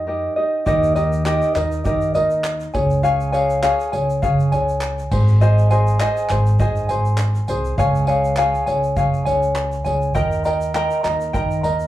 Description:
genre	acoustic pop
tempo	101 BPM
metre	4/4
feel	swing 55% on 16ths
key	unclear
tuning	A4 = 440 Hz
part	tenor ukulele	accompaniment	0.0-11.9 s	Eb4 to Bb5	-19 LUFS	equal	slapback echo
part	upright bass	bass	0.0-11.9 s	Ab1 to Eb3	-20 LUFS	equal	none
part	unplugged drum kit	drums	0.7-11.8 s	crash cymbal, handclaps, kick drum, tambourine	-26 LUFS	equal	none
part	egg shaker	percussion	0.7-11.9 s	none	-48 LUFS	right 5 dB	none
room	light reverb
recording	live gig heard through the venue's PA, club reverb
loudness	-16 LUFS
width	side -14 dB against mid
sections	0.7-11.9 A section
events	none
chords	0.0 Eb; 2.7 Db; 5.1 Ab; 7.8 Db; 10.2 Eb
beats	0.07 | 0.67 1.26 1.85 2.45 | 3.04 3.63 4.23 4.82 | 5.41 6.01 6.60 7.19 | 7.79 8.38 8.97 9.56 | 10.16 10.75 11.34

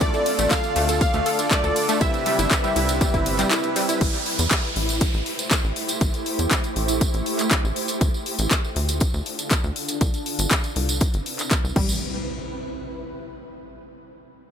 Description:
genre	progressive house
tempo	120 BPM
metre	4/4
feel	straight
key	A minor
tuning	A4 = 439 Hz
part	plucky unison lead	melody	0.0-3.5 s	D5 to F5	-27 LUFS	left 3 dB	phaser, dub echo
part	soft round pluck	second line	0.0-3.5 s	D5 to F5	-35 LUFS	equal	none
part	shimmering ambient pad	sustained chords	0.0-12.0 s	C3 to C5	-30 LUFS	right 1 dB	chorus, built-in reverb, sidechain pumping
part	wide unison pluck	arpeggios	0.0-3.9, 11.8-12.0 s	G3 to A4	-28 LUFS	equal	sidechain pumping, dub echo
part	soft supersaw	stabs	0.0-4.0 s	C3 to E5	-28 LUFS	right 4 dB	sidechain pumping, dub echo
part	tight sequencer bass	bass	0.0-12.0 s	G1 to E2	-26 LUFS	equal	sidechain pumping
part	electronic kick drum	drums	0.0-11.9 s	none	-22 LUFS	equal	overdrive
part	house drum kit	drums	0.0-11.9 s	crash cymbal, handclaps, hi-hat, ride cymbal	-26 LUFS	left 2 dB	overdrive, sidechain pumping on hats, sidechain pumping on cymbals
part	tambourine	percussion	0.0-12.0 s	none	-31 LUFS	right 3 dB	none
part	downlifter and impact	sound effects	4.0-8.0, 11.9-13.8 s	none	-33 LUFS	right 1 dB	none
room	light reverb, digital ambience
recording	none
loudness	-20 LUFS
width	side -8 dB against mid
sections	0.0-4.0 A section; 4.0-12.0 B section; 12.0-14.0 C section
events	drop 0.0-4.0; filter sweep on ambient pad 4.0-12.0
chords	0.0 Dm; 2.0 Cmaj7; 4.0 Am7; 8.0 Dm; 10.0 Cmaj7; 11.8 Am7; 12.0 N.C.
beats	| 0.01 0.51 1.01 1.51 | 2.01 2.51 3.01 3.51 | 4.01 4.51 5.01 5.51 | 6.01 6.51 7.01 7.51 | 8.01 8.51 9.01 9.51 | 10.01 10.51 11.01 11.51 | 12.01 12.51 13.01 13.51

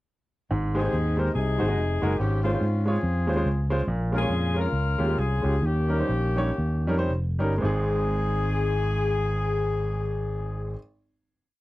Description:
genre	uptempo gospel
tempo	107-143 BPM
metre	4/4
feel	swing 60% on 8ths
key	Ab major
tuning	A4 = 440 Hz
part	clear baby grand piano	accompaniment	0.5-10.8 s	Ab1 to Eb5	-28 LUFS	right 1 dB	none
part	fingered electric bass	bass	0.5-10.7 s	F1 to Ab2	-25 LUFS	equal	none
part	warm horn section	melody	0.8-10.8 s	Bb3 to Bb4	-29 LUFS	left 4 dB	none
room	little or no reverb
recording	dry, close 1970s-style studio recording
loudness	-23 LUFS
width	side -17 dB against mid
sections	0.5-7.6 breakdown; 7.6-11.6 final chord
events	slowing down 3.9-7.6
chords	0.5 Abmaj7; 1.4 Ab7; 2.2 Dbmaj7/Ab; 3.9 Bbm7; 5.6 Eb7; 7.6 Ab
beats	| 0.51 0.93 1.35 1.77 | 2.19 2.61 3.03 3.45 | 3.87 4.30 4.73 5.17 | 5.62 6.08 6.57 7.09 | 7.63 8.19 8.75 9.31 | 9.87 10.43

